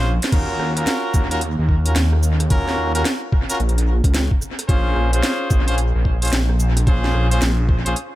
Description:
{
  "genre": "glitch hop",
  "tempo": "110 BPM",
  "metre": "4/4",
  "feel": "swing 63% on 16ths",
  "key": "unclear",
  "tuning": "A4 = 441 Hz",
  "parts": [
    { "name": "brilliant horn section", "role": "stabs", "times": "0.0-8.0 s", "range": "Db4 to C5", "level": "-24 LUFS", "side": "equal", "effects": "sidechain pumping, dub echo" },
    { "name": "phased detuned saw bass", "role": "bass", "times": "0.0-7.9 s", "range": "Bb1 to Eb2", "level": "-18 LUFS", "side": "equal", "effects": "phaser, overdrive" },
    { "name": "drum and bass drum kit", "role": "drums", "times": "0.0-8.1 s", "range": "crash cymbal, hi-hat, rim click, shaker, snare drum", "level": "-25 LUFS", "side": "right 1 dB", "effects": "dub echo" },
    { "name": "electronic kick drum", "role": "drums", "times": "0.3-7.8 s", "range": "none", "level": "-18 LUFS", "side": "equal", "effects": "none" }
  ],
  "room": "digital ambience",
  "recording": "echo-heavy mix",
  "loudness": "-16 LUFS",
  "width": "side -16 dB against mid",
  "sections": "0.0-8.2 A section",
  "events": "break 0.0-0.3; drum fill 0.0-0.3",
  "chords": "0.3 Ebm7; 4.7 Bbm9",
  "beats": "| 0.32 0.87 1.42 1.96 | 2.51 3.05 3.60 4.14 | 4.69 5.23 5.78 6.32 | 6.87 7.42 7.96"
}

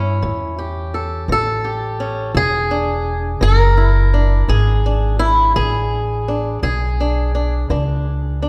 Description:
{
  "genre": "acoustic country blues, solo or duo",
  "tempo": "56 BPM (dotted quarters)",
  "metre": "12/8",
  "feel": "straight",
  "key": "E mixolydian",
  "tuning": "A4 = 440 Hz",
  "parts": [
    { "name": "fingerpicked swing-style acoustic guitar", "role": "melody", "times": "0.0-8.5 s", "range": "E2 to A#4", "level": "-21 LUFS", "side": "equal", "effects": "none" },
    { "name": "upright bass", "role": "bass", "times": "0.0-8.5 s", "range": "E1 to G2", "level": "-20 LUFS", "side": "equal", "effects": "none" }
  ],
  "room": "moderate scoring stage reverb, RT60 2.1 s",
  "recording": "recorded in a church or concert hall",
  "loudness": "-17 LUFS",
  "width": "mono",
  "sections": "0.0-8.5 A section",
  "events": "none",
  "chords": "0.0 A7; 2.3 E7",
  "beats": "0.22 1.28 | 2.35 3.41 4.48 5.55 | 6.62 7.69"
}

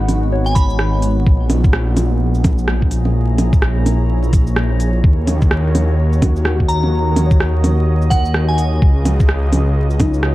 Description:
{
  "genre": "future garage",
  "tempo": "127 BPM",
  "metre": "4/4",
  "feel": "swing 60% on 16ths",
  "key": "unclear",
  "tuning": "A4 = 439 Hz",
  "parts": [
    { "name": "muted felt-like synth keys", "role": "accompaniment", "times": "0.0-1.4, 6.2-10.3 s", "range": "D#4 to C#5", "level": "-26 LUFS", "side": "left 4 dB", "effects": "chorus, sidechain pumping, tape echo" },
    { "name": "deep dark ambient pad", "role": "sustained chords", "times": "0.0-10.3 s", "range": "G#3 to A#5", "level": "-25 LUFS", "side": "right 1 dB", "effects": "chorus, built-in reverb, sidechain pumping" },
    { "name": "swelling detuned saw bass", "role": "bass", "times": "0.0-10.3 s", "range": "G#1 to D#2", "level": "-16 LUFS", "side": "equal", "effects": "sidechain pumping" },
    { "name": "organic electronic drum kit", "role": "drums", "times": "0.1-10.3 s", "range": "bongos, hi-hat, rim click, shaker", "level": "-21 LUFS", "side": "right 1 dB", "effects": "none" },
    { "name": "glassy synth bell", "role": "melody", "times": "0.5-1.0, 6.7-8.8 s", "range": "F#5 to B5", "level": "-24 LUFS", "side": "equal", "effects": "chorus, tremolo, analog delay" },
    { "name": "electronic kick drum", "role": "drums", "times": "0.6-10.1 s", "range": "none", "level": "-13 LUFS", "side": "equal", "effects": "none" }
  ],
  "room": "little or no reverb",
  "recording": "vinyl crackle",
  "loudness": "-13 LUFS",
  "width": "side -17 dB against mid",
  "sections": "0.0-10.3 A section",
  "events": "none",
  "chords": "0.0 G#m7; 1.3 A#m7b5; 5.0 D#m7; 8.8 C#9sus4",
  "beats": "0.32 0.79 | 1.26 1.74 2.21 2.68 | 3.15 3.63 4.10 4.57 | 5.04 5.51 5.99 6.46 | 6.93 7.41 7.88 8.35 | 8.82 9.29 9.77 10.24"
}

